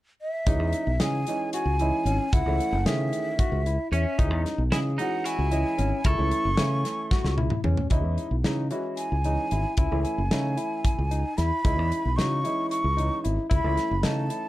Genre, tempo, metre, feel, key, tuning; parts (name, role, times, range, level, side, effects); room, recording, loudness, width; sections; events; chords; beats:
progressive instrumental, band music in an uneven meter; 226 BPM (eighths); 7/8; straight; C# minor; A4 = 439 Hz
breathy hollow jazz flute; melody; 0.2-14.5 s; E5 to C#6; -30 LUFS; right 1 dB
warm baby grand piano; accompaniment; 0.5-14.5 s; D#3 to D#5; -32 LUFS; right 2 dB
barky tine electric piano; arpeggios; 0.5-14.5 s; C#4 to G#5; -32 LUFS; left 4 dB
fingered electric bass; bass; 0.5-14.3 s; F#1 to C#3; -26 LUFS; equal
modern studio drum kit; drums; 0.5-14.4 s; hi-hat, kick drum, snare drum, toms; -27 LUFS; equal
twelve-string electric guitar; second line; 3.9-7.4 s; C#4 to A4; -35 LUFS; right 4 dB
light reverb; dark, warm production; -23 LUFS; side -16 dB against mid
0.5-7.9 A section; 7.9-14.5 B section
drum fill 7.1-7.9
0.5 C#madd9; 2.3 A; 4.2 C#madd9; 6.1 A; 7.9 C#madd9; 9.8 A; 11.6 C#madd9; 13.5 A
0.20 | 0.47 0.73 1.00 1.27 1.53 1.80 2.06 | 2.33 2.60 2.86 3.13 3.39 3.66 3.93 | 4.19 4.46 4.72 4.99 5.26 5.52 5.79 | 6.05 6.32 6.59 6.85 7.12 7.38 7.65 | 7.92 8.18 8.45 8.71 8.98 9.25 9.51 | 9.78 10.05 10.31 10.58 10.85 11.11 11.38 | 11.64 11.91 12.18 12.44 12.71 12.98 13.24 | 13.51 13.78 14.04 14.31